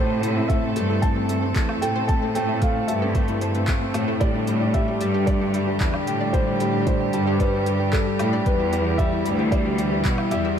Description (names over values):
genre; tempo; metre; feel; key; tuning
piano and strings electronica; 113 BPM; 4/4; straight; A minor; A4 = 439 Hz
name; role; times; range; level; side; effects
felt-muted upright piano; melody; 0.0-10.6 s; A4 to A5; -28 LUFS; right 1 dB; ping-pong delay
rich chamber string section; sustained chords; 0.0-10.6 s; C3 to A4; -30 LUFS; right 3 dB; sidechain pumping
analog pluck; arpeggios; 0.0-10.5 s; G4 to B5; -34 LUFS; right 1 dB; none
warm concert grand piano; riff; 0.0-10.6 s; G3 to G4; -25 LUFS; left 2 dB; ping-pong delay
clear studio cello section; bass; 0.0-10.6 s; D2 to B2; -25 LUFS; equal; sidechain pumping
deep house drum kit; drums; 0.2-10.4 s; handclaps, hi-hat, woodblock; -35 LUFS; equal; none
electronic kick drum; drums; 0.5-10.2 s; none; -23 LUFS; equal; overdrive
room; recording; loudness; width
wet cathedral reverb, RT60 6.5 s; dreamy mix soaked in reverb; -19 LUFS; side -8 dB against mid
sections
0.0-10.6 A section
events
none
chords
0.0 Am; 4.2 Gsus2; 8.5 Em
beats
0.50 1.03 1.56 | 2.09 2.62 3.15 3.68 | 4.21 4.75 5.28 5.81 | 6.34 6.87 7.40 7.93 | 8.46 8.99 9.52 10.05 | 10.59